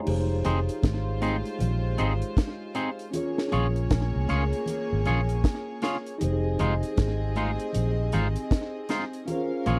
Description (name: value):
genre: lovers rock reggae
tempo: 78 BPM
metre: 4/4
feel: swing 61% on 16ths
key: unclear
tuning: A4 = 440 Hz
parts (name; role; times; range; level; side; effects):
- mellow tine electric piano; accompaniment; 0.0-9.8 s; Db4 to Bb5; -36 LUFS; equal; slapback echo
- warm studio string section; second line; 0.1-9.8 s; Ab3 to F5; -36 LUFS; equal; none
- vintage muted fingered electric bass; bass; 0.1-9.8 s; F1 to Db2; -29 LUFS; equal; none
- deep reggae drum kit; drums; 0.1-9.8 s; crash cymbal, hi-hat, kick drum, snare drum; -29 LUFS; equal; slapback echo
- congas; percussion; 0.1-9.8 s; none; -40 LUFS; equal; none
- twangy electric guitar; stabs; 0.4-9.8 s; Ab3 to Db5; -30 LUFS; equal; none
room: little or no reverb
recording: dry, close 1970s-style studio recording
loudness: -27 LUFS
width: mono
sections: 0.1-9.8 A section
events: none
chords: 0.1 Fm7; 3.1 Bbm7; 6.2 Fm7; 9.3 Bbm7